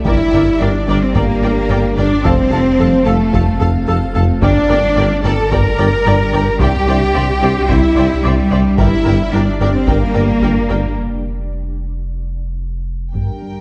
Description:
cinematic, hybrid orchestral and electronic film score; 110 BPM; 4/4; straight; G dorian; A4 = 440 Hz
warm symphonic violin section; melody; 0.0-11.0 s; G4 to Bb5; -27 LUFS; equal; low-pass filter
granular cloud pad; sustained chords; 0.0-13.6 s; G3 to F5; -27 LUFS; equal
mellow French horn section; sustained chords; 0.0-11.0 s; G3 to Bb4; -22 LUFS; equal
bright symphonic cello section; bass; 0.0-13.6 s; G2 to Bb4; -21 LUFS; equal
punchy sub bass; bass; 0.0-13.2 s; F1 to C2; -24 LUFS; equal
warm symphonic violin section; second line; 0.1-13.6 s; Bb4 to A5; -29 LUFS; equal
warm symphonic viola section; accompaniment; 0.1-13.6 s; D4 to D5; -26 LUFS; equal; low-pass filter
fat analog bass; riff; 0.1-13.6 s; C2 to G3; -22 LUFS; equal; low-pass filter
mellow tuba; bass; 0.1-10.8 s; F1 to C2; -24 LUFS; equal
rich symphonic double bass section; bass; 0.1-13.6 s; F1 to C2; -24 LUFS; equal
taiko ensemble; drums; 0.1-13.6 s; -23 LUFS; equal
moderate scoring stage reverb, RT60 1.8 s; dark, warm production; -14 LUFS; mono
0.0-13.2 A section
break 11.0-13.2
0.1 Gm; 2.2 F; 4.4 Gm; 6.6 Cadd9; 8.8 Gm; 11.0 N.C.

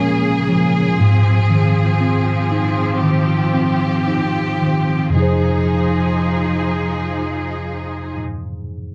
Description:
pop; 55-61 BPM; 4/4; straight; F minor; A4 = 440 Hz
tine electric piano; accompaniment; 0.0-8.9 s; F2 to C5; -19 LUFS; equal; overdrive
rich studio string section; sustained chords; 0.0-8.2 s; Db3 to Ab4; -22 LUFS; equal
light reverb; -17 LUFS; mono
0.0-5.1 A section; 5.1-8.9 B section
slowing down 0.0-5.1
0.0 Bbm7; 1.0 Ab6; 5.1 Fm7

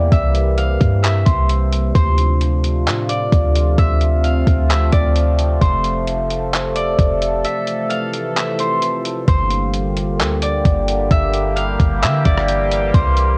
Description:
hip hop, atmospheric cloud-rap; 131 BPM; 4/4; half-time; G dorian; A4 = 440 Hz
Celtic harp; melody; 0.0-13.4 s; C5 to F5; -24 LUFS; equal; cassette tape, analog delay
sweeping resonant pad; sustained chords; 0.0-13.4 s; C3 to A4; -24 LUFS; equal; chorus, phaser, sidechain pumping
clean 808-style bass; bass; 0.0-13.4 s; F1 to D3; -20 LUFS; equal
trip hop sampler-style drum kit; drums; 0.1-13.3 s; handclaps, hi-hat, kick drum, rim click; -20 LUFS; equal; cassette tape
light reverb; home recording on cassette; -17 LUFS; mono
0.0-9.3 A section; 9.3-13.4 B section
break 7.4-9.3
0.0 C7; 1.9 Dm7; 5.6 F; 9.3 Gm7

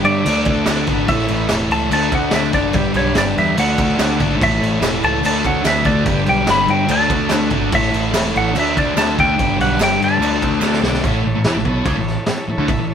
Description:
garage rock duo or trio; 145 BPM; 4/4; straight; A mixolydian; A4 = 440 Hz
clean lap steel guitar; melody; 0.0-10.8 s; C#5 to B5; -19 LUFS; equal
overdriven combo organ; sustained chords; 0.0-12.9 s; E4 to E5; -28 LUFS; right 1 dB
thick fuzz guitar; riff; 0.0-12.9 s; G2 to E4; -19 LUFS; left 1 dB; distortion
growling picked electric bass; bass; 0.0-12.9 s; E1 to G2; -22 LUFS; equal; overdrive
raw garage drum kit; drums; 0.0-12.8 s; crash cymbal, kick drum, snare drum; -21 LUFS; right 1 dB
group handclap; percussion; 0.3-10.7 s; -30 LUFS; right 4 dB
moderate studio reverb, RT60 0.8 s; band playing live in one room; -14 LUFS; side -8 dB against mid
0.0-11.0 A section; 11.0-12.9 B section
drum fill 10.6-11.0
0.3 D; 1.1 A; 1.9 D; 2.8 G; 3.6 D; 4.4 A; 5.2 D; 6.1 G; 6.9 D; 7.7 A; 8.6 D; 9.4 G; 10.2 D; 11.0 A

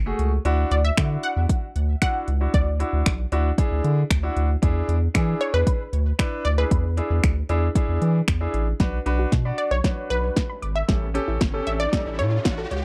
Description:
dance-pop; 115 BPM; 4/4; straight; B dorian; A4 = 442 Hz
round analog bass; bass; 0.0-12.8 s; F#1 to E3; -25 LUFS; equal; sidechain pumping
clear concert grand piano; accompaniment; 0.1-12.6 s; A3 to D5; -31 LUFS; equal; sidechain pumping
deep house drum kit; drums; 0.2-12.8 s; finger snaps, hi-hat, kick drum, snare drum; -24 LUFS; equal; overdrive
unison pluck; melody; 0.7-12.8 s; B4 to F#5; -30 LUFS; equal
soft round pluck; arpeggios; 8.8-12.8 s; F#3 to D6; -36 LUFS; equal; chorus, sidechain pumping, tape echo
riser; sound effects; 10.3-12.8 s; -38 LUFS; equal
little or no reverb; dry, close 1970s-style studio recording; -22 LUFS; mono
0.0-8.8 A section; 8.8-12.8 B section
kick muted 0.5-1.0; build-up 8.8-12.8; drum fill 8.8-12.8; riser 10.3-12.8
0.5 Dadd9; 4.6 E7; 8.8 Bm; 10.9 A7

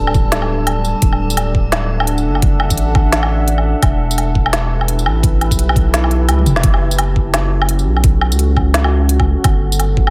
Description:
half-time drum and bass; 171 BPM; 4/4; swing 59% on 16ths, half-time; F# phrygian; A4 = 440 Hz
deep dark ambient pad; sustained chords; 0.0-10.1 s; G3 to F#5; -24 LUFS; equal; chorus, built-in reverb, sidechain pumping
saturated sub bass; bass; 0.0-10.1 s; D1 to C#2; -18 LUFS; equal
metallic inharmonic drone; texture; 0.0-6.6 s; A4; -32 LUFS; equal; chorus, built-in reverb
electronic kick drum; drums; 0.1-10.1 s; -17 LUFS; equal; overdrive
organic electronic drum kit; drums; 0.1-10.1 s; hi-hat, snare drum, tambourine, toms, woodblock; -21 LUFS; equal
light reverb; -15 LUFS; mono
0.0-6.6 A section; 6.6-10.1 A section
drop 0.0-6.6, 6.6-10.1; drum fill 6.4; band accent 6.5
0.0 G; 1.0 D; 3.8 Em; 6.6 F#m; 9.4 G

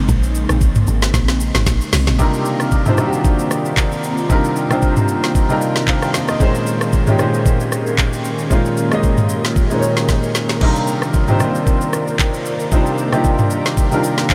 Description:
amapiano; 114 BPM; 4/4; swing 55% on 16ths; A4 = 440 Hz
airy breathy pad; sustained chords; 0.0-14.3 s; Db3 to D5; -26 LUFS; equal; chorus, phaser, sidechain pumping
deep log drum bass; bass; 0.0-2.2 s; Ab1 to C2; -19 LUFS; equal
smooth R&B drum kit; drums; 0.1-14.3 s; crash cymbal, handclaps, hi-hat, kick drum, rim click, shaker, snare drum, toms; -20 LUFS; equal
warm concert grand piano; accompaniment; 2.2-14.3 s; Bb2 to G5; -20 LUFS; equal; lush chorus
wet huge ambient reverb, RT60 7.6 s; dreamy mix soaked in reverb; -16 LUFS; mono
0.0-2.2 A section; 2.2-14.3 B section
drop 0.0-2.2; drum fill 1.1-2.2, 10.1-10.6
0.0 Bbm11; 2.2 Cm11; 6.4 Bbm11; 10.6 Cm11

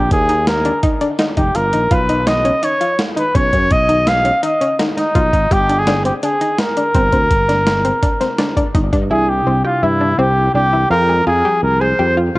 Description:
progressive instrumental, band music in an uneven meter; 167 BPM; 5/4; straight; A4 = 440 Hz
warm trumpet; melody; 0.0-12.2 s; D#4 to F5; -16 LUFS; equal; cassette tape, analog delay
analog pluck; arpeggios; 0.0-12.4 s; C4 to Ab4; -20 LUFS; left 1 dB; chorus, analog delay
sustaining fretless electric bass; bass; 0.0-12.4 s; F1 to G2; -18 LUFS; equal
dusty soul sampler-style drum kit; drums; 0.1-9.0 s; hi-hat, kick drum, snare drum; -19 LUFS; equal
mellow tine electric piano; accompaniment; 9.1-12.4 s; C3 to G5; -23 LUFS; right 1 dB; phaser
light reverb, digital ambience; home recording on cassette; -13 LUFS; side -20 dB against mid
0.0-9.1 A section; 9.1-12.4 B section
kick and snare drop out 1.6-1.9
0.0 Eb5; 1.9 B; 5.5 Gm; 9.1 Cadd9; 10.9 Fmadd9

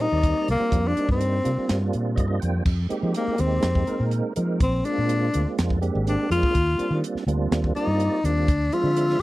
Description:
electric jazz fusion; 124 BPM; 4/4; straight; F minor; A4 = 440 Hz
warm tenor saxophone; melody; 0.0-9.2 s; Bb3 to F4; -24 LUFS; left 2 dB; slapback echo
tonewheel organ; accompaniment; 0.0-9.2 s; F3 to G5; -28 LUFS; right 4 dB; slow rotary speaker, chorus vibrato
fretless electric bass; bass; 0.0-9.2 s; Ab1 to F3; -24 LUFS; equal
crisp fusion drum kit; drums; 0.2-9.2 s; crash cymbal, hi-hat, kick drum, snare drum; -25 LUFS; equal
little or no reverb; dry, close 1970s-style studio recording; -21 LUFS; side -17 dB against mid
0.0-2.7 A section; 2.7-9.2 B section
tonewheel organ fill 1.9-2.7; tenor saxophone solo 2.7-9.2
0.0 Cm7; 2.7 Fm11; 4.6 Bb9; 6.5 Ebmaj13; 8.5 Dm7b5

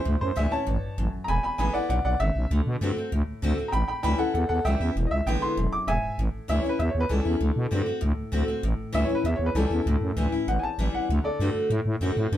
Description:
rockabilly; 196 BPM; 4/4; straight; A mixolydian; A4 = 438 Hz
warm upright piano; melody; 0.0-11.5 s; E4 to D6; -28 LUFS; equal
picked steel-string acoustic guitar; accompaniment; 0.0-12.4 s; E2 to F#4; -30 LUFS; left 2 dB
growling FM bass; bass; 0.1-12.4 s; E1 to B2; -25 LUFS; equal
light reverb; band playing live in one room; -23 LUFS; side -12 dB against mid
0.0-6.2 A section; 6.2-12.4 B section
upright piano solo 0.0-6.2
0.0 A7; 1.3 E7; 2.5 D7; 3.7 A7; 5.0 E7; 6.2 A7; 7.4 D7; 8.6 A7; 11.1 D7

